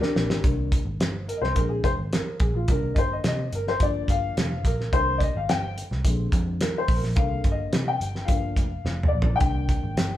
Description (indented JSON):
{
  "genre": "uptempo 1960s-style soul",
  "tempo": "107 BPM",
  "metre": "4/4",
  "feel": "straight",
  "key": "C minor",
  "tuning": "A4 = 437 Hz",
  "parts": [
    { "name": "dark upright piano", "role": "accompaniment", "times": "0.0-10.2 s", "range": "D3 to G5", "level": "-27 LUFS", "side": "left 3 dB", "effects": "none" },
    { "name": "cloth-damped thuddy drum kit", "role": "drums", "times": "0.0-10.1 s", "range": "hi-hat, kick drum, snare drum, toms", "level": "-24 LUFS", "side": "equal", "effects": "none" },
    { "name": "vintage muted picked electric bass", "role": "bass", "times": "0.2-10.2 s", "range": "F1 to C3", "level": "-28 LUFS", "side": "equal", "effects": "none" }
  ],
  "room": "moderate large studio reverb, RT60 0.9 s",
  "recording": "band playing live in one room",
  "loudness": "-22 LUFS",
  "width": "side -13 dB against mid",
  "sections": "0.4-10.2 A section",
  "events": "drum fill 0.0-0.4, 8.9-9.4; upright piano solo 0.4-10.2",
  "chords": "0.4 Cm7; 1.6 Bb7; 2.7 Cm7; 3.8 Gm7; 4.9 Cm7; 6.0 Bb7; 7.2 Cm7; 8.3 Gm7; 9.4 Cm7",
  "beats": "| 0.44 1.00 1.56 2.13 | 2.69 3.25 3.81 4.37 | 4.93 5.49 6.05 6.61 | 7.17 7.73 8.29 8.85 | 9.41 9.97"
}